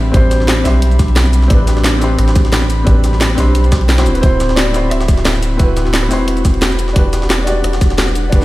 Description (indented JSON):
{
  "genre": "liquid drum and bass",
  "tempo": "176 BPM",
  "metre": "4/4",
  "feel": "swing 54% on 16ths",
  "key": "A dorian",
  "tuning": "A4 = 440 Hz",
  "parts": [
    { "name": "clear grand piano", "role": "melody", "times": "0.0-1.3, 4.0-6.1 s", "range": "B4 to E5", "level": "-24 LUFS", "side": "right 2 dB", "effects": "dub echo" },
    { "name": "felt-muted upright piano", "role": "accompaniment", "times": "0.0-8.4 s", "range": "C4 to D5", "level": "-19 LUFS", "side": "equal", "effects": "dub echo" },
    { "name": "airy breathy pad", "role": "sustained chords", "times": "0.0-8.4 s", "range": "G3 to B5", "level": "-23 LUFS", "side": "left 2 dB", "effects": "chorus, sidechain pumping" },
    { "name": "warm sub bass", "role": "bass", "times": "0.0-8.4 s", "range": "D1 to B1", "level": "-14 LUFS", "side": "equal", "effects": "none" },
    { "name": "electronic kick drum", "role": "drums", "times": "0.1-8.4 s", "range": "none", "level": "-11 LUFS", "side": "equal", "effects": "studio reverb" },
    { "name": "garage drum kit", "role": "drums", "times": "0.1-8.4 s", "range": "hi-hat, rim click, shaker, snare drum", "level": "-19 LUFS", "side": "equal", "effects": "studio reverb" },
    { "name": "jungle sampler-style drum kit", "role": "drums", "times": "0.1-8.4 s", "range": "hi-hat, snare drum", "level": "-24 LUFS", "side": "equal", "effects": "overdrive, high-pass filter on hats, studio reverb, high-pass filter on snare" }
  ],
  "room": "light reverb",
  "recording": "played on a big sound system in a bare room, large studio reverb",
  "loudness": "-10 LUFS",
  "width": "side -17 dB against mid",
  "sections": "0.0-8.4 A section",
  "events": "none",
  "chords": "0.0 Am11; 4.1 D13; 7.0 Em7",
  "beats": "| 0.14 0.48 0.82 1.16 | 1.50 1.84 2.19 2.53 | 2.87 3.21 3.55 3.89 | 4.23 4.57 4.91 5.25 | 5.59 5.94 6.28 6.62 | 6.96 7.30 7.64 7.98 | 8.32"
}